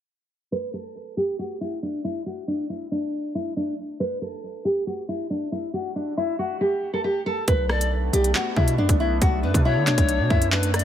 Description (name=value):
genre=hip hop, drill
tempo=138 BPM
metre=4/4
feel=half-time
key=B minor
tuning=A4 = 444 Hz
part: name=nylon-string guitar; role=melody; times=0.5-10.7 s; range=D4 to B4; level=-25 LUFS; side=equal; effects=none
part: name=warbly tape-like pad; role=sustained chords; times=7.5-10.8 s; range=A3 to D4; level=-31 LUFS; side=equal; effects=chorus, built-in reverb
part: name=hard-hitting 808-style bass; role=bass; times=7.5-10.8 s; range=B1 to D3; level=-23 LUFS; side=right 1 dB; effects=none
part: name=drill drum kit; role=drums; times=7.5-10.8 s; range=handclaps, hi-hat, kick drum, rim click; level=-22 LUFS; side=equal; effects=none
part: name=breathy bright pan flute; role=second line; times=7.7-10.8 s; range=B4 to D5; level=-29 LUFS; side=left 6 dB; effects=digital delay
room=digital ambience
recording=low-pass filter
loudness=-22 LUFS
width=side -10 dB against mid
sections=0.5-7.5 A section; 7.5-10.8 B section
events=filter sweep 0.5-7.5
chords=0.5 N.C.; 7.5 Bm7